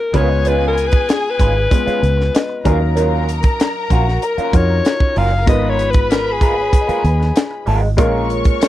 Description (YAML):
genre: lush 1970s-style soul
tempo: 96 BPM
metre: 4/4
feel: straight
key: G# dorian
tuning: A4 = 440 Hz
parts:
  - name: breathy alto saxophone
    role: melody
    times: 0.0-7.9 s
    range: F#4 to E#5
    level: -19 LUFS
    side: left 3 dB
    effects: none
  - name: clear grand piano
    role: accompaniment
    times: 0.0-8.7 s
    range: F#3 to E#5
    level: -23 LUFS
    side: left 3 dB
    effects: none
  - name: electric guitar through a small old amp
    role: riff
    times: 0.0-8.6 s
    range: F#3 to B4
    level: -23 LUFS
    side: right 4 dB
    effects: wah
  - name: warm studio string section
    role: second line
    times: 0.1-8.7 s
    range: C#4 to C#6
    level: -25 LUFS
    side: equal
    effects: none
  - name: fingered electric bass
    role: bass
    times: 0.1-8.5 s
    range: F#1 to E#2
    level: -17 LUFS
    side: right 1 dB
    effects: none
  - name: tight funk drum kit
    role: drums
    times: 0.1-8.7 s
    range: hi-hat, kick drum, snare drum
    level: -16 LUFS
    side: equal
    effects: none
  - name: small celesta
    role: texture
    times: 2.3-8.6 s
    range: G#4 to D#5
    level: -29 LUFS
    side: equal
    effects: stereo widening
room: little or no reverb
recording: dry, close 1970s-style studio recording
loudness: -13 LUFS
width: side -14 dB against mid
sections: 0.0-8.7 A section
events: alto saxophone solo 0.0-8.7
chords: 0.1 C#7; 2.6 D#m9; 5.5 G#m69; 8.0 A#m7